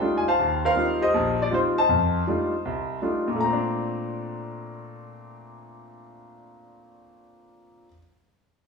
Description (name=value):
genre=solo jazz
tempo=160 BPM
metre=4/4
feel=swing 64% on 8ths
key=Bb major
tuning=A4 = 440 Hz
part: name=clear concert grand piano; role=solo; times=0.0-8.0 s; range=Bb1 to Bb5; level=-23 LUFS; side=left 1 dB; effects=none
room=wet large studio reverb, RT60 1.1 s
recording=band playing live in one room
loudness=-22 LUFS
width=side -4 dB against mid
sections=0.0-3.4 A section; 3.4-6.4 B section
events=none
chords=0.4 Eb69; 1.9 F13; 3.4 Bbmaj9